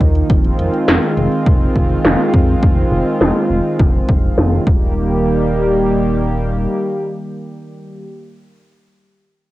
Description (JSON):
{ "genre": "synthwave", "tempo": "103 BPM", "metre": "4/4", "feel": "straight", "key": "Eb major", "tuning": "A4 = 440 Hz", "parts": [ { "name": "warm analog pad", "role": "sustained chords", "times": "0.0-8.1 s", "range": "Eb3 to G4", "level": "-17 LUFS", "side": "right 1 dB", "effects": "chorus, sidechain pumping, cassette tape" }, { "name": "chorused synth bass", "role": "bass", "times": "0.0-6.7 s", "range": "Eb1 to F2", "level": "-18 LUFS", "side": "equal", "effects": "sidechain pumping" }, { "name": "80s electronic pad drums", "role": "drums", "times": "0.0-4.6 s", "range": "hi-hat, snare drum", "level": "-15 LUFS", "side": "equal", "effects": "low-pass filter on hats, low-pass filter on snare, low-pass filter on room" }, { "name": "electronic kick drum", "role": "drums", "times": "0.0-4.8 s", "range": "none", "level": "-14 LUFS", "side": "equal", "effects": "none" } ], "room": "moderate booth ambience, RT60 0.2 s", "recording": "home recording on cassette", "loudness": "-12 LUFS", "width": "side -16 dB against mid", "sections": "0.0-5.0 A section; 5.0-7.3 B section", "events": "filter sweep on drum 0.0-5.0", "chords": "0.3 Fm7; 4.7 Eb" }